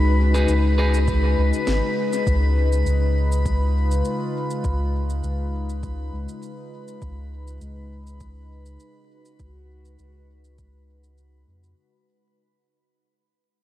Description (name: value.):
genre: ambient dub.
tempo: 101 BPM.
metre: 4/4.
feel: swing 54% on 16ths.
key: unclear.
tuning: A4 = 441 Hz.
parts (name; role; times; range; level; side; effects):
warbly tape-like pad; sustained chords; 0.0-11.8 s; Db3 to Cb5; -26 LUFS; left 2 dB; chorus, built-in reverb, phaser.
soft dub sub bass; bass; 0.0-11.7 s; Ab1 to F2; -21 LUFS; equal; none.
drifting glass-harmonics texture; texture; 0.0-11.8 s; Cb6; -33 LUFS; equal; chorus, built-in reverb.
electric guitar at the edge of break-up; stabs; 0.3-1.0 s; Eb4 to Cb5; -31 LUFS; equal; dub echo.
electronic shaker and snare drum; drums; 0.3-11.7 s; none; -36 LUFS; right 1 dB; overdrive, dub echo.
electronic kick drum; drums; 1.1-10.7 s; none; -27 LUFS; equal; overdrive.
room: moderate huge ambient reverb, RT60 7.6 s.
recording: dreamy mix soaked in reverb, vinyl crackle.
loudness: -19 LUFS.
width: side -14 dB against mid.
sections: 0.0-11.8 A section.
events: fade-out 0.0-11.8.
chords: 0.0 Cb6/Db; 2.3 Db7; 7.0 Cb6/Db.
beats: 0.48 1.08 1.67 | 2.27 2.86 3.45 4.05 | 4.64 5.24 5.83 6.42 | 7.02 7.61 8.21 8.80 | 9.39 9.99 10.58 11.18.